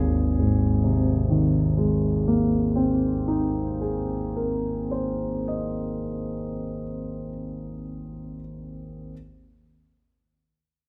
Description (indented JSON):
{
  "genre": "classical, impressionist solo piano",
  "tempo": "41 BPM",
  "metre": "5/4",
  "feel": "rubato",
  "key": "Ab major",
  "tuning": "A4 = 440 Hz",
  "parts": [
    { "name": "clear concert grand piano", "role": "solo", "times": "0.0-9.1 s", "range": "Ab1 to Eb5", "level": "-26 LUFS", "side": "equal", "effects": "none" }
  ],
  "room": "moderate recital hall reverb, RT60 1.8 s",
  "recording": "close, detailed microphones",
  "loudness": "-25 LUFS",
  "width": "mono",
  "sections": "0.0-6.9 A section",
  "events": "none",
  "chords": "0.0 Abadd9",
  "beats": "1.05 2.53 4.00 5.46"
}